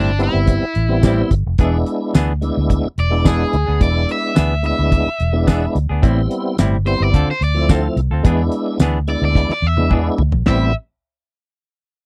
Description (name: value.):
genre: straight-eighth soul blues.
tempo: 108 BPM.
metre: 4/4.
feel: straight.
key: A minor.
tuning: A4 = 439 Hz.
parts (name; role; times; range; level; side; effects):
crunchy overdriven guitar; melody; 0.0-10.7 s; D4 to E5; -24 LUFS; equal; none.
semi-hollow electric guitar; stabs; 0.0-10.7 s; A2 to A4; -23 LUFS; equal; none.
vintage muted fingered electric bass; bass; 0.0-10.7 s; E1 to E2; -20 LUFS; equal; none.
tonewheel organ; accompaniment; 0.2-10.7 s; F3 to E4; -23 LUFS; equal; slow rotary speaker, overdrive, chorus vibrato.
damped 70s drum kit; drums; 0.2-10.6 s; china cymbal, hi-hat, kick drum, snare drum, tambourine, toms; -17 LUFS; equal; none.
room: little or no reverb.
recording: dry, close 1970s-style studio recording.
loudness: -17 LUFS.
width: mono.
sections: 0.0-10.5 A section; 10.5-12.1 B section.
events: drum fill 9.4-10.5.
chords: 0.0 Am7; 1.6 E7; 6.0 Am7; 7.1 Dm7; 8.2 E7; 10.5 Am7.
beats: 0.48 1.03 | 1.59 2.15 2.70 3.25 | 3.81 4.36 4.92 5.47 | 6.03 6.58 7.14 7.69 | 8.25 8.80 9.36 9.91 | 10.47.